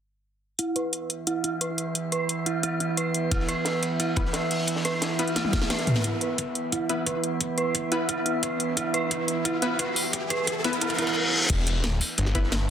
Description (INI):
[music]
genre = dark technical drum and bass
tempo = 176 BPM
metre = 4/4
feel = straight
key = unclear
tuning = A4 = 440 Hz
[part]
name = metallic inharmonic drone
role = sustained chords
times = 1.0-12.7 s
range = E3 to E5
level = -30 LUFS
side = right 2 dB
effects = chorus, built-in reverb, sidechain pumping
[part]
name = dark detuned synth bell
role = arpeggios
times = 0.6-11.1 s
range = E4 to B4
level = -29 LUFS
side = right 3 dB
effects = chorus, tremolo, sidechain pumping, low-pass filter, digital delay
[part]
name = drum and bass drum kit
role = drums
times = 0.6-12.6 s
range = crash cymbal, hi-hat, snare drum, toms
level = -27 LUFS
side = left 1 dB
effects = soft clipping on snare
[part]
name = crunchy breakbeat drum kit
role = drums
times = 3.3-6.0, 11.5-12.6 s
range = hi-hat, ride cymbal, snare drum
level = -35 LUFS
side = left 1 dB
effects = high-pass filter on cymbals, high-pass filter on hats, high-pass filter on snare, high-pass filter on room
[part]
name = electronic kick drum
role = drums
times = 3.3-12.4 s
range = none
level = -30 LUFS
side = left 1 dB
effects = high-pass filter on kick, high-pass filter on room
[part]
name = riser and reverse cymbal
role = sound effects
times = 4.6-11.5 s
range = none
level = -31 LUFS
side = left 1 dB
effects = none
[part]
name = orchestra-hit-like synth stab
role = stabs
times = 4.2-12.4 s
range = B3 to B4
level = -31 LUFS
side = left 2 dB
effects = built-in reverb, digital delay
[part]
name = snarling distorted saw bass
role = bass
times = 11.5-12.7 s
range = E1 to G1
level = -25 LUFS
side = equal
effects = distortion, overdrive
[sound]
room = moderate digital room reverb, RT60 1.2 s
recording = dense, heavily limited modern master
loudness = -24 LUFS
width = side -9 dB against mid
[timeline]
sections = 0.6-6.0 A section; 6.0-11.5 B section; 11.5-12.7 C section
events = filter sweep on synth bell 0.6-6.0, 6.0-11.5; drum fill 5.4-6.0, 8.8-11.2; build-up 6.0-11.5; riser 6.0-11.2; reverse cymbal 10.8-11.5; drop 11.5-12.7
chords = 0.6 E5